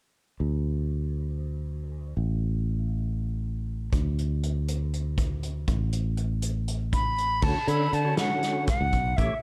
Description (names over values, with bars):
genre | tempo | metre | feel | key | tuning
progressive instrumental, band music in an uneven meter | 239 BPM (eighths) | 7/8 | straight | unclear | A4 = 441 Hz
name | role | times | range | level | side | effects
sustaining fretless electric bass | bass | 0.4-9.3 s | A1 to D3 | -30 LUFS | equal | none
unplugged drum kit | drums | 3.9-9.3 s | crash cymbal, hi-hat, kick drum, snare drum | -31 LUFS | equal | none
silver concert flute | melody | 6.9-9.4 s | E5 to B5 | -30 LUFS | equal | none
percussive tonewheel organ | accompaniment | 7.4-9.3 s | D3 to C#5 | -34 LUFS | equal | overdrive, chorus vibrato, slow rotary speaker
room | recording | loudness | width
small room ambience | dark, warm production | -28 LUFS | mono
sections
0.4-7.4 A section; 7.4-9.4 B section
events
none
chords
0.4 N.C.; 5.7 Asus2; 7.4 Dmaj7